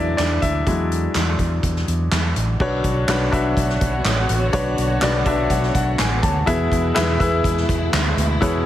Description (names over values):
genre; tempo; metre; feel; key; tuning
piano-driven pop; 124 BPM; 4/4; straight; unclear; A4 = 443 Hz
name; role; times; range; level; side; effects
clear concert grand piano; accompaniment; 0.0-8.7 s; B2 to A5; -21 LUFS; left 2 dB; none
vintage muted fingered electric bass; bass; 0.0-8.6 s; A1 to E2; -22 LUFS; equal; none
soft-mallet drum kit; drums; 0.2-8.5 s; crash cymbal, handclaps, hi-hat, kick drum, snare drum; -23 LUFS; equal; none
warm studio string section; sustained chords; 2.6-8.7 s; B2 to C#5; -28 LUFS; right 1 dB; none
room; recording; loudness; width
light reverb; heavily compressed radio sound, multiband compression; -17 LUFS; side -12 dB against mid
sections
0.0-2.6 A section; 2.6-8.7 B section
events
grand piano solo 0.0-2.6; grand piano fill 5.0-6.5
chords
0.0 Eadd9; 2.6 Bmadd9; 6.5 E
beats
0.18 | 0.66 1.15 1.63 2.12 | 2.60 3.09 3.57 4.06 | 4.54 5.03 5.51 5.99 | 6.48 6.96 7.45 7.93 | 8.41